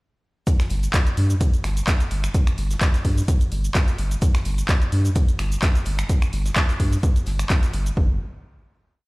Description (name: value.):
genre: acid house.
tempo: 128 BPM.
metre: 4/4.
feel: swing 55% on 16ths.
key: unclear.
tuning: A4 = 440 Hz.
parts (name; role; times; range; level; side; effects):
damped 70s drum kit; drums; 0.5-7.9 s; hi-hat, snare drum; -40 LUFS; left 1 dB; none.
electronic kick drum; drums; 0.5-8.1 s; none; -19 LUFS; equal; none.
punchy analog drum machine; drums; 0.5-7.9 s; finger snaps, handclaps, hi-hat, shaker; -28 LUFS; equal; none.
saturated sub bass; bass; 0.7-8.2 s; G1 to G2; -22 LUFS; equal; tube saturation, sidechain pumping.
room: small room ambience.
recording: played on a big sound system in a bare room, stone room reverb.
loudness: -19 LUFS.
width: side -24 dB against mid.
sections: 0.5-8.0 groove; 8.0-9.1 final note.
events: none.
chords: none.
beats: | 0.47 0.94 1.41 1.88 | 2.35 2.81 3.28 3.75 | 4.22 4.69 5.16 5.63 | 6.09 6.56 7.03 7.50 | 7.97.